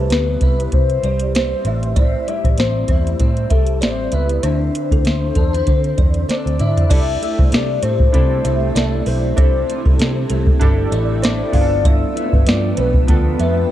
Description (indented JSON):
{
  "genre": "indie pop, bedroom pop",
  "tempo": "97 BPM",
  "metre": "4/4",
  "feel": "swing 55% on 16ths",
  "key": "C major",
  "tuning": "A4 = 441 Hz",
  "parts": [
    { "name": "soft octave-layered synth lead", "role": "melody", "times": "0.0-13.7 s", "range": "A4 to E5", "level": "-23 LUFS", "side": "left 3 dB", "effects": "phaser, wide subtle chorus, tape echo" },
    { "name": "buzzing kalimba", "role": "second line", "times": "0.0-13.6 s", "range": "A4 to F5", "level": "-27 LUFS", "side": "right 4 dB", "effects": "ensemble chorus, tape echo" },
    { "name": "electric guitar through a small old amp", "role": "accompaniment", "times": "0.0-13.7 s", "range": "G2 to E4", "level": "-26 LUFS", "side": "left 2 dB", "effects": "ensemble chorus, vibrato effect" },
    { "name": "vintage muted picked electric bass", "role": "bass", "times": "0.0-13.6 s", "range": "G1 to D3", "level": "-19 LUFS", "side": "equal", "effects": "none" },
    { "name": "soft vintage rhythm box", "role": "drums", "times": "0.1-13.6 s", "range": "crash cymbal, hi-hat, kick drum, snare drum, toms", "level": "-16 LUFS", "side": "equal", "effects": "none" },
    { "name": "chorused retro synth keys", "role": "accompaniment", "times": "6.9-13.7 s", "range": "B3 to A4", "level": "-26 LUFS", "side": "right 3 dB", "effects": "tremolo, cassette tape" },
    { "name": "granular cloud pad", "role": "sustained chords", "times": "7.9-13.7 s", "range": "F3 to G5", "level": "-30 LUFS", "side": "right 1 dB", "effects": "built-in reverb" }
  ],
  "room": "light reverb, digital ambience",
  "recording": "dark, warm production",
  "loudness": "-14 LUFS",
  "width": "side -12 dB against mid",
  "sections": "0.0-6.9 A section; 6.9-13.7 B section",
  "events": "drum fill 6.3-6.9",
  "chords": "0.0 Cmaj7; 1.7 Am7; 4.4 Dsus2; 6.9 C6; 11.5 G7"
}